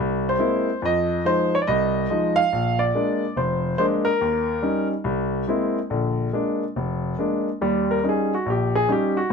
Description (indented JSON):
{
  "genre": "jazz",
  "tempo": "142 BPM",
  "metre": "4/4",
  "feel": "swing 65% on 8ths",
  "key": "unclear",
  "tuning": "A4 = 440 Hz",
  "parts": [
    { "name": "warm grand piano", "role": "solo", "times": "0.0-9.3 s", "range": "F1 to F5", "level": "-20 LUFS", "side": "equal", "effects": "none" }
  ],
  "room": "light reverb",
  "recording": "close, detailed microphones",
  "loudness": "-20 LUFS",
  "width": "side -5 dB against mid",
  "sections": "0.0-7.6 A section; 7.6-9.3 B section",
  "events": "grand piano solo 7.6-9.3",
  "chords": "0.0 Caug7; 0.8 Fm7; 2.5 Bb7; 4.2 Eb7; 5.1 Caug7; 5.9 Bb7; 7.6 Eb7",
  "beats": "0.40 | 0.82 1.25 1.67 2.09 | 2.52 2.94 3.37 3.79 | 4.21 4.64 5.06 5.49 | 5.91 6.33 6.76 7.18 | 7.61 8.03 8.46 8.88 | 9.31"
}